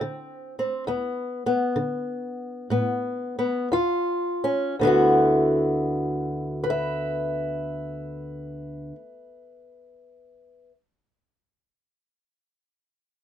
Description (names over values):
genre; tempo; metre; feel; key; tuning
acoustic country blues, solo or duo; 54-70 BPM; 4/4; swing 68% on 8ths; D mixolydian; A4 = 440 Hz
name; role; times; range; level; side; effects
fingerpicked old ladder-braced acoustic guitar; solo; 0.0-10.7 s; D2 to E5; -23 LUFS; equal; none
room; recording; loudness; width
moderate booth ambience, RT60 0.2 s; minimal, uncompressed stereo recording; -22 LUFS; side -10 dB against mid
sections
0.0-4.8 A section; 4.8-9.2 B section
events
slowing down 0.0-4.8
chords
0.0 D5; 3.7 Ebsus2; 4.8 D69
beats
| 0.86 1.77 2.72 3.72 | 4.79 5.89 7.00 8.10